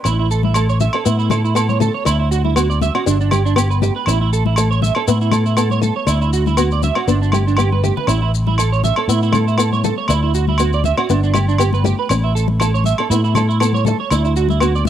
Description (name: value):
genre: highlife guitar band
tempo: 120 BPM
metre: 4/4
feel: swing 54% on 16ths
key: A mixolydian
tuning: A4 = 439 Hz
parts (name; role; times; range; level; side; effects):
- picked swing-style acoustic guitar; accompaniment; 0.0-14.8 s; G3 to D4; -22 LUFS; left 9 dB; cassette tape
- agogo bells; percussion; 0.0-14.7 s; none; -24 LUFS; right 3 dB; none
- electric guitar at the edge of break-up; arpeggios; 0.1-14.9 s; D4 to E5; -21 LUFS; right 10 dB; analog chorus, cassette tape, analog delay
- fingered electric bass; bass; 0.1-14.9 s; G1 to A2; -16 LUFS; equal; none
- maracas; percussion; 0.1-14.9 s; none; -29 LUFS; left 12 dB; none
- congas; percussion; 0.4-14.9 s; none; -23 LUFS; left 10 dB; none
room: light reverb, small room ambience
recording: home recording on cassette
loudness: -14 LUFS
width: side -10 dB against mid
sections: 0.0-14.9 A section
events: drum fill 7.6-8.1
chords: 0.0 A; 2.1 Dadd9; 3.1 G; 4.1 A; 6.1 Dadd9; 7.1 G; 8.1 A; 10.1 Dadd9; 11.1 G; 12.1 A; 14.1 Dadd9